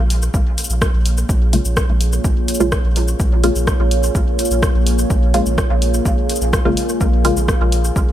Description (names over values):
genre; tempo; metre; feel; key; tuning
dub techno; 126 BPM; 4/4; straight; Bb minor; A4 = 440 Hz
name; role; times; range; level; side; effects
deep dark ambient pad; sustained chords; 0.1-8.1 s; Bb3 to F5; -23 LUFS; equal; chorus, built-in reverb, sidechain pumping
warm sub bass; bass; 0.0-8.0 s; Ab1 to Bb1; -19 LUFS; equal; sidechain pumping
deep house drum kit; drums; 0.1-8.1 s; hi-hat, rim click, shaker; -24 LUFS; left 1 dB; studio reverb, dub echo
electronic kick drum; drums; 0.3-8.1 s; none; -18 LUFS; equal; studio reverb
filtered dub chord stab; stabs; 1.5-7.4 s; Db3 to F4; -22 LUFS; equal; chorus, phaser, sidechain pumping, dub echo
room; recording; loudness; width
digital ambience; none; -14 LUFS; side -12 dB against mid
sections
0.0-8.1 A section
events
none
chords
0.0 Bbm7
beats
0.34 0.82 | 1.29 1.77 2.25 2.72 | 3.20 3.67 4.15 4.63 | 5.10 5.58 6.06 6.53 | 7.01 7.48 7.96